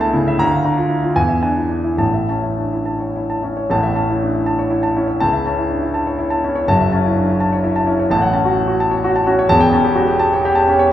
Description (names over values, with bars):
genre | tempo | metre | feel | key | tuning
classical, romantic character piece for solo piano | 68-88 BPM (dotted quarters) | 6/8 | rubato | A major | A4 = 444 Hz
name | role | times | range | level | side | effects
warm grand piano | solo | 0.0-10.9 s | E1 to Bb5 | -14 LUFS | equal | none
room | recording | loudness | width
wet recital hall reverb, RT60 1.5 s | heard from further back in the room | -14 LUFS | side -11 dB against mid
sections
0.0-3.7 A section; 3.7-10.9 B section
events
none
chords
0.4 Bb/D; 1.2 E7; 2.0 A; 5.2 A/C#; 6.7 F#m7; 8.1 F#m/A; 9.5 A7/E